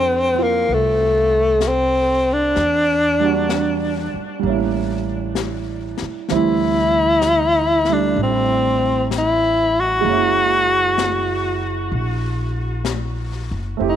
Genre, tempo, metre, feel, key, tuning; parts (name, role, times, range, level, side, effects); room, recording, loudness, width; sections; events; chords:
jazz; 64 BPM; 4/4; swing 69% on 8ths; A4 = 440 Hz
clear tenor saxophone; melody; 0.0-14.0 s; A3 to Gb4; -17 LUFS; left 1 dB; tape echo
warm baby grand piano; accompaniment; 0.0-14.0 s; E3 to A4; -24 LUFS; right 12 dB
upright bass; bass; 0.0-14.0 s; F1 to F2; -25 LUFS; left 1 dB
jazz brush drum kit; drums; 0.7-14.0 s; brushed snare drum, hi-hat, snare drum; -30 LUFS; left 8 dB
light reverb, small room ambience; 1960s-style stereo with parts hard left and right; -16 LUFS; side -10 dB against mid
0.0-14.0 A section
0.0 F69; 2.5 Em7b5; 4.4 A7b9; 6.3 D9sus4; 10.0 Gb9